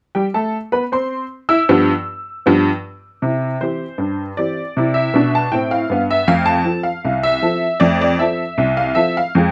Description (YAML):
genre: ragtime piano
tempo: 78 BPM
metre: 2/4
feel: straight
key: C major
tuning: A4 = 439 Hz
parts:
  - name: honky-tonk upright piano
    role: solo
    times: 0.1-9.5 s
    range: C2 to E6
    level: -18 LUFS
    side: equal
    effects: none
room: light reverb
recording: close, detailed microphones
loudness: -18 LUFS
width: mono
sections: 0.1-3.2 A section; 3.2-9.5 B section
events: none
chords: 0.1 C; 1.7 G7; 3.2 C; 6.3 F